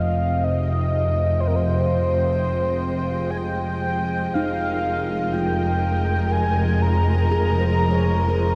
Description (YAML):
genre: ambient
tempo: 61 BPM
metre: 3/4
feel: straight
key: F minor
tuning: A4 = 441 Hz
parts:
  - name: warm velvety synth lead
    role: melody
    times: 0.0-8.6 s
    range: Bb4 to Bb5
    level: -27 LUFS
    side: equal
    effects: chorus, shimmer reverb, delay
  - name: rich studio string section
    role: sustained chords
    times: 0.0-8.6 s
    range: F3 to G5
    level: -30 LUFS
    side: equal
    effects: shimmer reverb
  - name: dark symphonic double bass section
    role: bass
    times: 0.0-8.6 s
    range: F1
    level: -25 LUFS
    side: equal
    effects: none
  - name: overtone-sweeping drone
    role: drone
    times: 0.0-8.6 s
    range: C3 to F3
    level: -32 LUFS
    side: equal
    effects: chorus, built-in reverb
  - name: handpan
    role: arpeggios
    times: 4.4-8.6 s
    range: Eb4 to Db5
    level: -31 LUFS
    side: equal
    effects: shimmer reverb, delay
room: wet cathedral reverb, RT60 5.9 s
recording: dreamy mix soaked in reverb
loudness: -22 LUFS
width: mono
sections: 0.0-8.6 A section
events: fade-in on string section 0.0-8.6; fade-out on synth drone 0.0-8.6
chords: 0.0 Fm9; 4.4 Ebsus4/F